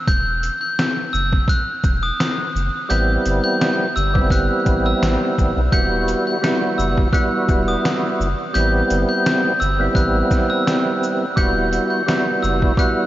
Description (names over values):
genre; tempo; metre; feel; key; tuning
hip hop, boom-bap hip-hop; 85 BPM; 4/4; swing 54% on 16ths; E minor; A4 = 436 Hz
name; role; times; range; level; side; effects
glockenspiel with brass mallets; melody; 0.1-13.1 s; D#6 to G6; -22 LUFS; equal; high-pass filter, low-pass filter, analog delay
soft dub sub bass; bass; 0.1-12.7 s; E1 to B1; -22 LUFS; equal; none
trip hop sampler-style drum kit; drums; 0.1-13.0 s; hi-hat, kick drum, shaker, snare drum; -21 LUFS; equal; none
percussive tonewheel organ; accompaniment; 2.9-13.1 s; G3 to F#4; -20 LUFS; right 1 dB; chorus vibrato, slow rotary speaker, high-pass filter, low-pass filter
room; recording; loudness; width
moderate huge ambient reverb, RT60 7.7 s; dreamy mix soaked in reverb, vinyl crackle, nothing above 7.5 kHz; -16 LUFS; side -14 dB against mid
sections
0.0-13.1 A section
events
break 0.0-2.9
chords
0.1 Esus2; 2.9 Am7; 5.7 Emadd9; 8.5 Am7; 11.4 Emadd9